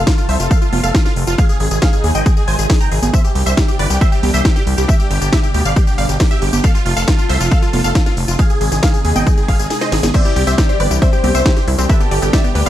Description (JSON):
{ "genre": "uplifting trance", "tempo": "137 BPM", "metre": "4/4", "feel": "straight", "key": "unclear", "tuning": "A4 = 440 Hz", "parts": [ { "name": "big supersaw lead", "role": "melody", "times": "0.0-12.7 s", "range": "F4 to Bb5", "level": "-22 LUFS", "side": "right 1 dB", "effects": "phaser, sidechain pumping, tape echo" }, { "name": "wide unison pluck", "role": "second line", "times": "0.0-12.7 s", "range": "F4 to Bb5", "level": "-25 LUFS", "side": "right 1 dB", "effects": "sidechain pumping, ping-pong delay" }, { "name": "analog string pad", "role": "sustained chords", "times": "0.0-12.7 s", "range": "B2 to A4", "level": "-25 LUFS", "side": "equal", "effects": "ensemble chorus, sidechain pumping" }, { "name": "gritty driven synth bass", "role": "bass", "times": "0.0-12.7 s", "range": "F1 to Eb2", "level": "-17 LUFS", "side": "equal", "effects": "sidechain pumping" }, { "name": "electronic kick drum", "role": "drums", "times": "0.1-12.4 s", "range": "none", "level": "-13 LUFS", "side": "equal", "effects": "overdrive" }, { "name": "techno drum kit", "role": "drums", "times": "0.1-12.7 s", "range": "congas, crash cymbal, hi-hat, ride cymbal, snare drum, tambourine", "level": "-21 LUFS", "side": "equal", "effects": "overdrive" }, { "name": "warm velvety synth lead", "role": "second line", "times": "10.1-12.7 s", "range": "A4 to D5", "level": "-23 LUFS", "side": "left 2 dB", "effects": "chorus, dub echo" }, { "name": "wide unison pluck", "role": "arpeggios", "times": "10.1-12.7 s", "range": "B3 to D5", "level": "-23 LUFS", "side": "left 4 dB", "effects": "sidechain pumping, ping-pong delay" } ], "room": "light reverb", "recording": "dark, warm production", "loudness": "-12 LUFS", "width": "side -12 dB against mid", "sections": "0.0-12.7 A section", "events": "kick drops out 9.7-10.1; drum fill 9.7-10.1", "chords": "0.0 F; 1.4 Ab; 3.1 Cadd9; 4.9 G; 6.6 F; 8.4 Ab; 10.1 Cadd9; 11.9 G", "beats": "0.07 0.51 0.95 | 1.38 1.82 2.26 2.70 | 3.13 3.57 4.01 4.45 | 4.89 5.33 5.76 6.20 | 6.64 7.08 7.51 7.95 | 8.39 8.83 9.27 9.71 | 10.14 10.58 11.02 11.46 | 11.89 12.33" }